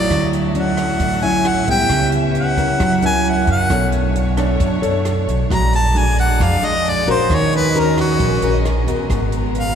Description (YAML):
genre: bossa nova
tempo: 134 BPM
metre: 4/4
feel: straight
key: unclear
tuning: A4 = 444 Hz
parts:
  - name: clear harmonica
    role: melody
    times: 0.0-9.8 s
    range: F#4 to A#5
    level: -19 LUFS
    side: left 1 dB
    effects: none
  - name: nylon-string guitar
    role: accompaniment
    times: 0.0-9.8 s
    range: A2 to C#5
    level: -19 LUFS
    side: equal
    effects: none
  - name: rich studio violin section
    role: sustained chords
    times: 0.0-9.8 s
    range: G#3 to F5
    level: -28 LUFS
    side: left 1 dB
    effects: none
  - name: upright bass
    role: bass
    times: 0.0-9.8 s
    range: G#1 to F#2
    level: -20 LUFS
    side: equal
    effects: none
  - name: compact cocktail drum kit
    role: drums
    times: 0.1-9.7 s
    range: hi-hat, kick drum, rim click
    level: -27 LUFS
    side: right 1 dB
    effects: none
room: wet cathedral reverb, RT60 5.6 s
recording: recorded in a church or concert hall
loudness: -14 LUFS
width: side -8 dB against mid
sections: 0.0-9.8 A section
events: harmonica solo 0.0-9.8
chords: 0.1 Dmaj9; 1.9 C#m7b5; 2.8 F#7; 3.7 Bm9; 5.5 A#7b13; 7.3 D#m7; 9.1 G#m9